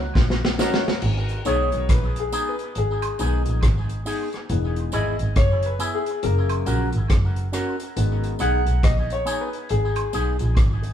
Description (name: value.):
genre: roots reggae.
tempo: 69 BPM.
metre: 4/4.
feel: swing 61% on 16ths.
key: G# minor.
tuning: A4 = 440 Hz.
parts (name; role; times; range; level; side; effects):
warm double bass; bass; 0.2-10.9 s; E1 to B1; -23 LUFS; equal; none.
vintage drum kit; drums; 0.2-10.9 s; crash cymbal, hi-hat, kick drum, rim click, snare drum; -22 LUFS; equal; none.
electric guitar with an envelope filter; accompaniment; 0.6-10.9 s; B3 to A#4; -29 LUFS; equal; phaser, dub echo.
warm upright piano; stabs; 0.6-10.5 s; C#3 to F#5; -26 LUFS; left 3 dB; none.
tambourine and woodblock; percussion; 0.6-10.4 s; none; -38 LUFS; right 4 dB; dub echo.
room: moderate stone room reverb, RT60 1.1 s.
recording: band playing live in one room.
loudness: -20 LUFS.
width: side -10 dB against mid.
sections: 0.0-1.0 A section; 1.0-10.9 B section.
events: drum fill 0.0-1.0; upright piano solo 1.0-10.9.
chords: 0.0 D#m7; 1.0 G#m; 4.5 E; 6.2 F#; 8.0 G#m.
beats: 0.16 | 1.02 1.89 2.76 3.63 | 4.50 5.36 6.23 7.10 | 7.97 8.84 9.70 10.57.